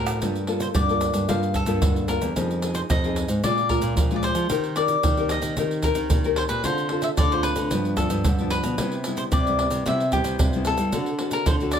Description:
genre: samba and choro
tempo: 112 BPM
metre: 4/4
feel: straight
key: G minor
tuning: A4 = 439 Hz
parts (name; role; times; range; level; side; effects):
- cavaquinho; melody; 0.0-11.8 s; G4 to F5; -27 LUFS; left 2 dB; none
- nylon-string guitar; accompaniment; 0.0-11.8 s; G2 to Bb4; -27 LUFS; left 3 dB; none
- nylon-string guitar; bass; 0.0-11.8 s; E2 to G3; -27 LUFS; right 1 dB; none
- egg shaker, pandeiro, tamborim and surdo; percussion; 0.1-11.8 s; none; -25 LUFS; right 1 dB; none
room: light reverb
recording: close, detailed microphones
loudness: -20 LUFS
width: side -8 dB against mid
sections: 0.2-11.8 A section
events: none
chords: 0.2 Gm9; 2.4 Fm7; 3.4 Bb7; 4.5 Eb6; 6.6 Dm7; 7.7 G7; 8.8 Cmaj7; 10.9 D7

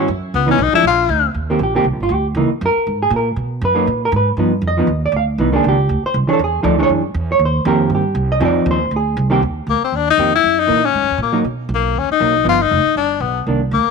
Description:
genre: jazz, small-group swing and bop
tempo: 237 BPM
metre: 4/4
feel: swing 57% on 8ths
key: Eb major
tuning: A4 = 438 Hz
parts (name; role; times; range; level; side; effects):
- hollow-body jazz guitar; accompaniment; 0.0-13.6 s; Eb3 to F5; -16 LUFS; right 2 dB; none
- upright bass; bass; 0.0-13.9 s; F1 to B2; -20 LUFS; right 2 dB; none
- clear tenor saxophone; melody; 0.4-1.3, 9.7-13.9 s; A#3 to E#4; -15 LUFS; left 10 dB; none
room: light reverb, small room ambience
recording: none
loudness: -14 LUFS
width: side -4 dB against mid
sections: 0.0-1.3 A section; 1.3-9.4 A section; 9.4-13.9 B section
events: tenor saxophone solo 0.0-1.3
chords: 0.3 C#m9; 0.8 A#; 1.3 Eb6; 2.4 Gb13; 3.4 Bmaj7(no3); 4.4 G7b13; 5.4 Cm9; 6.4 E13; 7.4 Eb6; 8.4 F7(no3); 8.9 Bb13; 9.4 Eb6; 10.4 Gb13; 11.4 Bmaj7; 12.5 G7b13

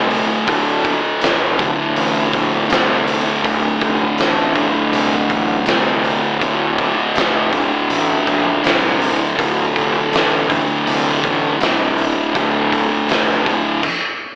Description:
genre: stoner and doom metal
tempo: 81 BPM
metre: 4/4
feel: straight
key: D minor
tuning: A4 = 439 Hz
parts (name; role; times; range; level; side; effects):
- thick fuzz guitar; riff; 0.0-13.8 s; D2 to D3; -16 LUFS; equal; distortion
- fuzz fingered electric bass; bass; 0.0-13.5 s; D1 to C2; -20 LUFS; equal; overdrive
- oversized low-tuned drum kit; drums; 0.1-14.0 s; crash cymbal, hi-hat, kick drum, snare drum; -19 LUFS; equal; none
room: light reverb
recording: AM radio sound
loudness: -14 LUFS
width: side -39 dB against mid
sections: 0.0-14.4 A section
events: stop 13.8-14.4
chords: 0.0 Dm

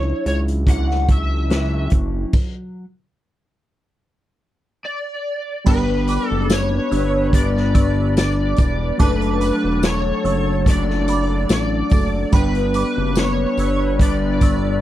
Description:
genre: indie pop, bedroom pop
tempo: 72 BPM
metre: 4/4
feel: swing 55% on 16ths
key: unclear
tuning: A4 = 436 Hz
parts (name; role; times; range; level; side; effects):
- overdriven slide guitar; melody; 0.0-14.8 s; B4 to F#5; -24 LUFS; equal; ensemble chorus, slapback echo
- electric guitar through a small old amp; accompaniment; 0.0-14.8 s; F#2 to E4; -24 LUFS; left 4 dB; analog chorus, warbly pitch drift
- soft electric-piano-like synth keys; accompaniment; 0.0-14.8 s; F#3 to E5; -28 LUFS; right 5 dB; chorus, cassette tape
- fat analog bass; bass; 0.0-14.8 s; E1 to C#2; -21 LUFS; equal; none
- raw garage drum kit; drums; 0.3-14.6 s; crash cymbal, hi-hat, kick drum, snare drum; -18 LUFS; equal; none
- glassy synth bell; second line; 5.7-14.6 s; G5 to E6; -30 LUFS; right 6 dB; tremolo, ensemble chorus, slapback echo
- warm woodwind section; sustained chords; 5.7-14.8 s; F#3 to B4; -31 LUFS; left 2 dB; none
- tambourine; percussion; 5.7-14.6 s; none; -38 LUFS; left 15 dB; none
room: little or no reverb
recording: dry, close 1970s-style studio recording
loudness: -16 LUFS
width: side -13 dB against mid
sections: 0.0-5.7 A section; 5.7-14.8 B section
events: stop 2.3-5.7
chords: 0.0 Dmaj9; 2.3 N.C.; 5.7 G; 9.0 D; 12.3 G

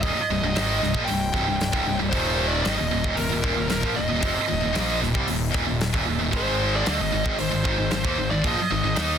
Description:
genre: heavy metal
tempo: 114 BPM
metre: 4/4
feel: straight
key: unclear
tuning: A4 = 440 Hz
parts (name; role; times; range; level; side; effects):
- high-gain lead guitar; melody; 0.0-9.2 s; Bb4 to G5; -28 LUFS; equal; distortion
- heavy high-gain guitar; riff; 0.0-9.2 s; C2 to Eb4; -27 LUFS; left 11 dB; distortion
- heavy high-gain guitar; riff; 0.0-9.2 s; C2 to Eb4; -26 LUFS; right 13 dB; distortion
- fuzz picked electric bass; bass; 0.0-9.2 s; C1 to Eb2; -28 LUFS; equal; overdrive
- modern studio drum kit; drums; 0.0-9.1 s; hi-hat, kick drum, snare drum; -29 LUFS; equal; none
room: small room reverb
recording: dense, heavily limited modern master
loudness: -21 LUFS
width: side -8 dB against mid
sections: 0.0-9.2 A section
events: none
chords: 0.0 Cm; 2.1 Eb5; 6.3 Ab5

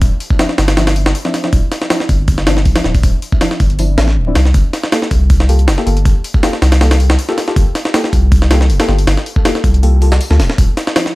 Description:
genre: drum and bass, jungle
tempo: 159 BPM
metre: 4/4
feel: swing 53% on 16ths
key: G minor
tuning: A4 = 440 Hz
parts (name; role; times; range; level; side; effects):
- soft dub sub bass; bass; 0.0-10.7 s; D1 to D2; -12 LUFS; equal; none
- jungle sampler-style drum kit; drums; 0.0-11.1 s; hi-hat, kick drum, snare drum; -14 LUFS; equal; none
- deep mellow chord stab; stabs; 0.4-11.2 s; F3 to A4; -20 LUFS; left 1 dB; chorus, dub echo
room: little or no reverb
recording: vinyl crackle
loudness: -10 LUFS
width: side -20 dB against mid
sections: 0.0-11.2 A section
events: none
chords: 0.0 Dm9; 4.5 Gm9; 10.6 Dm9

